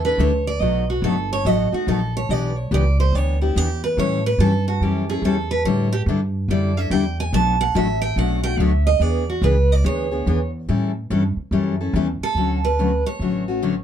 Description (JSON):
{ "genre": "acoustic string swing (jazz manouche)", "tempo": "143 BPM", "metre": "4/4", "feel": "swing 64% on 8ths", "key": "unclear", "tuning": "A4 = 435 Hz", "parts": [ { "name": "picked steel-string acoustic guitar", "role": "melody", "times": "0.0-13.8 s", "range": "E4 to A5", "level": "-23 LUFS", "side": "right 4 dB", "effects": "none" }, { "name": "picked steel-string acoustic guitar", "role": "accompaniment", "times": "0.0-13.7 s", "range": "B2 to A4", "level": "-22 LUFS", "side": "left 4 dB", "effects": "none" }, { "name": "upright bass", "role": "bass", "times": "0.0-13.8 s", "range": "G1 to A2", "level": "-21 LUFS", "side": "right 1 dB", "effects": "none" } ], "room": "moderate club ambience, RT60 0.5 s", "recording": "dark, warm production", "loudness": "-18 LUFS", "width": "side -9 dB against mid", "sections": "0.0-12.4 A section; 12.4-13.8 B section", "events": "steel-string acoustic guitar solo 0.0-12.4", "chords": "0.0 Asus4; 0.6 B7; 2.3 Em7; 4.0 A7; 5.6 A7sus4; 7.3 Bm7; 9.0 E7; 10.7 A7; 12.4 Dmaj7" }